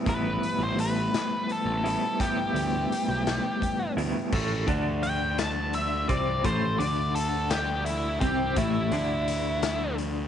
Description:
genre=psychedelic rock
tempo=56 BPM (dotted quarters)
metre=6/8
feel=straight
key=A minor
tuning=A4 = 441 Hz
part: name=electric guitar through a small old amp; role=riff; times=0.0-10.3 s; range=A2 to E4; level=-30 LUFS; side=left 1 dB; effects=tremolo
part: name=octave-fuzz lead guitar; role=melody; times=0.1-9.9 s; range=E4 to A5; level=-30 LUFS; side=left 1 dB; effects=distortion, slapback echo
part: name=fuzz picked electric bass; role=bass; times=0.1-10.3 s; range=A1 to D2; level=-30 LUFS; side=right 1 dB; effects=overdrive
part: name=raw garage drum kit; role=drums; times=0.1-10.1 s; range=crash cymbal, hi-hat, kick drum, snare drum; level=-33 LUFS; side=left 2 dB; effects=none
room=small room ambience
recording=1960s-style stereo, nothing above 10.5 kHz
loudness=-24 LUFS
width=side -9 dB against mid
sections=0.0-4.3 A section; 4.3-10.3 B section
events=lead electric guitar solo 4.3-10.3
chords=0.0 Em/A; 4.3 Am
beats=| 0.07 1.13 | 2.19 3.25 | 4.32 5.38 | 6.44 7.51 | 8.57 9.63

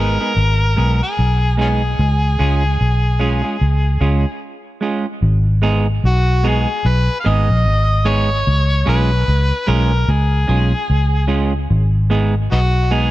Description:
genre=roots reggae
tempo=74 BPM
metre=4/4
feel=swing 61% on 16ths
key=G# dorian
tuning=A4 = 440 Hz
part: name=overdriven harmonica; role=melody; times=0.0-13.1 s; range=B3 to E#5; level=-21 LUFS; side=left 1 dB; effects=tape echo
part: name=semi-hollow electric guitar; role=accompaniment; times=0.0-13.1 s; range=G#3 to G#4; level=-22 LUFS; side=right 4 dB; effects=tape echo
part: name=vintage muted fingered electric bass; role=bass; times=0.0-13.1 s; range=G#1 to C#2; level=-15 LUFS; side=equal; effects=none
room=small room ambience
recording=none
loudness=-14 LUFS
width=side -16 dB against mid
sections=0.0-5.2 A section; 5.2-13.1 B section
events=none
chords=0.0 G#m; 2.0 C#; 5.2 G#m; 8.5 C#; 11.7 G#m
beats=0.36 1.17 | 1.98 2.79 3.60 4.41 | 5.22 6.03 6.84 7.65 | 8.46 9.27 10.08 10.89 | 11.70 12.51

